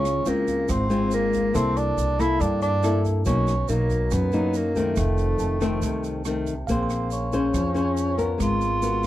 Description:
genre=bossa nova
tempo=140 BPM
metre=4/4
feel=straight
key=Bb minor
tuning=A4 = 439 Hz
part: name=breathy tenor saxophone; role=melody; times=0.0-9.1 s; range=A3 to F4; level=-26 LUFS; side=right 1 dB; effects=none
part: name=nylon-string guitar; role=accompaniment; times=0.0-9.1 s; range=F2 to C5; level=-25 LUFS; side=left 3 dB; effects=none
part: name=upright bass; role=bass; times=0.0-9.1 s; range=F1 to G2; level=-26 LUFS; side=right 1 dB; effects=none
part: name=open jazz drum kit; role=drums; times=0.1-9.1 s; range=hi-hat, kick drum, rim click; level=-33 LUFS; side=right 1 dB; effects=none
part: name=egg shaker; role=percussion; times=0.1-9.1 s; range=none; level=-43 LUFS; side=right 16 dB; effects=none
part: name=bell-like tine electric piano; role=accompaniment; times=5.4-8.4 s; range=F5 to C6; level=-36 LUFS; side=right 3 dB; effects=fast stereo tremolo
room=studio ambience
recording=dry, close 1970s-style studio recording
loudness=-21 LUFS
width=side -14 dB against mid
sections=0.0-6.7 A section; 6.7-9.1 B section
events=none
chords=0.0 Dbmaj7; 1.5 C13; 3.3 Bmaj7; 5.0 F7; 6.7 Bbm9; 8.4 Abm9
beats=0.26 0.69 1.12 | 1.54 1.97 2.40 2.83 | 3.26 3.69 4.11 4.54 | 4.97 5.40 5.82 6.25 | 6.68 7.11 7.54 7.96 | 8.39 8.82

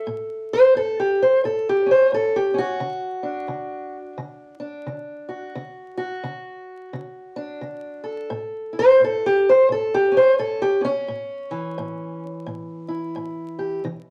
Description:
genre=acoustic country blues, solo or duo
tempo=87 BPM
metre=4/4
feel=swing 60% on 8ths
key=A mixolydian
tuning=A4 = 440 Hz
part: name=fingerpicked acoustic archtop guitar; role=solo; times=0.0-14.1 s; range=A2 to C5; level=-22 LUFS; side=equal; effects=none
room=moderate studio reverb, RT60 0.5 s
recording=vinyl crackle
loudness=-20 LUFS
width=mono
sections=0.0-14.1 A section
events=steel-string acoustic guitar solo 0.0-14.1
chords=0.0 A7; 2.8 D; 8.3 A7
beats=| 0.06 0.74 1.43 2.12 | 2.81 3.50 4.19 4.88 | 5.57 6.25 6.95 7.63 | 8.32 9.01 9.70 10.39 | 11.09 11.78 12.47 13.16 | 13.85

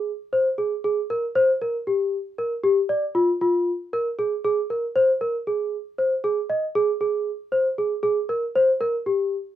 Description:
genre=contemporary instrumental, contemporary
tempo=234 BPM (eighths)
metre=7/8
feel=straight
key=Ab lydian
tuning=A4 = 442 Hz
part: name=celesta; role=solo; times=0.0-9.3 s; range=F4 to Eb5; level=-21 LUFS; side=equal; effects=none
room=little or no reverb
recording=dark, warm production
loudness=-21 LUFS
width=side -12 dB against mid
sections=0.0-9.6 A section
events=none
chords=none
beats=0.07 0.33 0.58 0.84 1.10 | 1.36 1.61 1.87 2.13 2.39 2.64 2.90 | 3.16 3.41 3.67 3.93 4.19 4.44 4.70 | 4.96 5.21 5.47 5.73 5.99 6.24 6.50 | 6.75 7.01 7.27 7.53 7.78 8.04 8.29 | 8.55 8.81 9.06 9.32

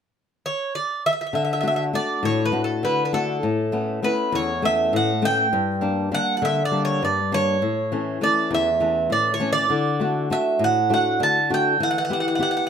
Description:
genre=greek folk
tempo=201 BPM (eighths)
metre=7/8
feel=straight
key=D major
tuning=A4 = 439 Hz
part: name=Greek bouzouki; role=melody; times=0.5-12.7 s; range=A4 to A5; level=-22 LUFS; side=right 3 dB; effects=plate reverb
part: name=flamenco guitar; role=accompaniment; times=1.3-12.7 s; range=E2 to G4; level=-23 LUFS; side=left 4 dB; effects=none
room=moderate studio reverb, RT60 0.6 s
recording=none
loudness=-19 LUFS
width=side -7 dB against mid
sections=0.0-1.3 A section; 1.3-12.7 B section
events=none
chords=0.0 N.C.; 1.3 D; 3.4 Aadd9; 5.5 Gm; 7.6 A; 9.7 D; 11.8 Em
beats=0.13 0.43 0.73 1.03 | 1.33 1.64 1.94 2.23 2.54 2.83 3.13 | 3.43 3.73 4.03 4.33 4.63 4.93 5.23 | 5.53 5.83 6.13 6.43 6.72 7.02 7.32 | 7.62 7.92 8.22 8.52 8.81 9.11 9.41 | 9.71 10.01 10.31 10.60 10.90 11.20 11.50 | 11.80 12.09 12.39 12.69

